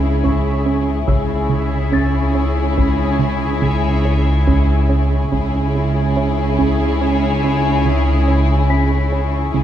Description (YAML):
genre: cinematic, suspense film score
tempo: 71 BPM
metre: 5/4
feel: straight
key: C# minor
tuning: A4 = 440 Hz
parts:
  - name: warm studio violin section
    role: melody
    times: 0.0-9.6 s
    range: G#4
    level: -25 LUFS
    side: left 6 dB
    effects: none
  - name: warm studio violin section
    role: second line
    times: 0.0-9.6 s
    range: E4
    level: -26 LUFS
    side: left 7 dB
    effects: none
  - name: dark studio viola section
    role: accompaniment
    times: 0.0-9.6 s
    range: C#4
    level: -25 LUFS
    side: right 2 dB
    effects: none
  - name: bubbling stepped-filter texture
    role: sustained chords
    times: 0.0-9.6 s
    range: G#4 to E5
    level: -27 LUFS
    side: equal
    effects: chorus, built-in reverb
  - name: plucky analog bass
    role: riff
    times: 0.0-9.6 s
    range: C#3 to C#4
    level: -23 LUFS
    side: right 6 dB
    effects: none
  - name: warm studio cello section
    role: bass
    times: 0.0-9.6 s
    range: C#3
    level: -23 LUFS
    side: right 2 dB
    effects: none
  - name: warm studio double bass section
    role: bass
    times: 0.0-9.6 s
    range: C#2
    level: -20 LUFS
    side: right 1 dB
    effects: none
  - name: saturated sub bass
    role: drone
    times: 0.0-9.6 s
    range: C#2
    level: -21 LUFS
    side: left 1 dB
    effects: none
  - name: taiko ensemble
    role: drums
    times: 0.2-7.0 s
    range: none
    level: -23 LUFS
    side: left 1 dB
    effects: none
  - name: small celesta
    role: texture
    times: 0.2-9.6 s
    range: B5 to B6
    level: -31 LUFS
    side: left 6 dB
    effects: none
room: moderate scoring stage reverb, RT60 1.9 s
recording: dark, warm production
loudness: -14 LUFS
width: side -10 dB against mid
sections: 0.0-9.6 A section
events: none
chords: 0.0 C#m